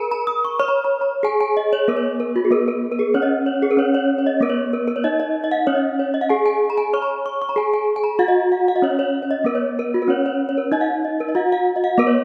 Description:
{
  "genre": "gamelan",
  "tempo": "95 BPM",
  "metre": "4/4",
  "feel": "straight",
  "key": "Db slendro",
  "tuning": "A4 = 439 Hz",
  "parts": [
    { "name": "gamelan-type bronze metallophone", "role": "melody", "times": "0.0-12.2 s", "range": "Cb4-45c to Db5", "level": "-22 LUFS", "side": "equal", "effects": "none" },
    { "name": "gamelan-type bronze metallophone", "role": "arpeggios", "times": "0.0-12.1 s", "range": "Gb4-35c to Eb6+30c", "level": "-23 LUFS", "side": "equal", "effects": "none" }
  ],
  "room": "wet lush hall reverb, RT60 2.6 s",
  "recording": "rough home demo mix",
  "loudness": "-20 LUFS",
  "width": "mono",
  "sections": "0.0-1.9 A section; 1.9-12.2 B section",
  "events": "none",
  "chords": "none"
}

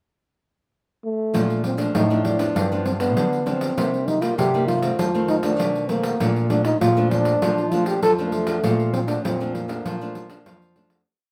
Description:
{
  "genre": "samba and choro",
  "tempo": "99 BPM",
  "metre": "4/4",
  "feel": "straight",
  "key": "Bb major",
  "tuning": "A4 = 441 Hz",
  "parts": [
    { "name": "breathy trombone", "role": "melody", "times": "1.0-10.8 s", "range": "A3 to A4", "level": "-25 LUFS", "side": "equal", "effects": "none" },
    { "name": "nylon-string guitar", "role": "accompaniment", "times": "1.3-11.0 s", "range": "F2 to Eb4", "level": "-29 LUFS", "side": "equal", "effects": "none" },
    { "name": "nylon-string guitar", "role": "bass", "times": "1.3-11.0 s", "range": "G2 to F3", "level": "-27 LUFS", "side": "equal", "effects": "none" },
    { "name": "pandeiro", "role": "percussion", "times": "1.3-11.1 s", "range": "none", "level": "-30 LUFS", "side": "equal", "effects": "none" }
  ],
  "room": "moderate studio reverb, RT60 0.6 s",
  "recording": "none",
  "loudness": "-21 LUFS",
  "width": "mono",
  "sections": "0.0-1.3 pickup bar; 1.3-11.1 A section",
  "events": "fade-out 8.6-11.1",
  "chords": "0.0 N.C.; 1.3 Bbmaj7; 2.6 G7; 3.8 Cm7; 5.0 F7; 6.2 Bbmaj7"
}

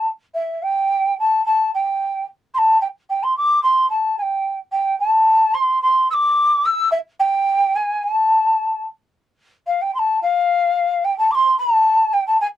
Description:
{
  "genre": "andean folk",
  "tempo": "110 BPM",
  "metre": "2/4",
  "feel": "straight",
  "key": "A minor",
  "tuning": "A4 = 440 Hz",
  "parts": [
    { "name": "large quena", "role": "solo", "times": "0.0-12.5 s", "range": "E5 to E6", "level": "-15 LUFS", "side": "equal", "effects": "none" }
  ],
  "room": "moderate booth ambience, RT60 0.2 s",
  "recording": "dark, warm production",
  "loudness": "-16 LUFS",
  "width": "side -12 dB against mid",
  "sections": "0.4-9.1 A section; 9.1-12.6 B section",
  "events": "none",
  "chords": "none"
}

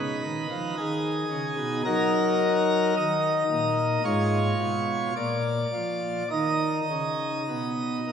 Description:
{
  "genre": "classical, chorale-style piece for pipe organ",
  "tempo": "51-57 BPM",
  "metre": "4/4",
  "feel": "rubato",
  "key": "Eb minor",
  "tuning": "A4 = 440 Hz",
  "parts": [
    { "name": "pipe organ, plenum", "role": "solo", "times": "0.0-8.1 s", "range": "Ab2 to Eb5", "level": "-24 LUFS", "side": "equal", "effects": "none" }
  ],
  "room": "wet church reverb, RT60 2.9 s",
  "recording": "none",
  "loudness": "-23 LUFS",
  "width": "side -7 dB against mid",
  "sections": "0.0-8.1 A section",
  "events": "none",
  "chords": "0.0 Abm; 1.9 Ebm/Gb; 4.1 Fdim/Ab; 5.2 Bb; 6.3 N.C."
}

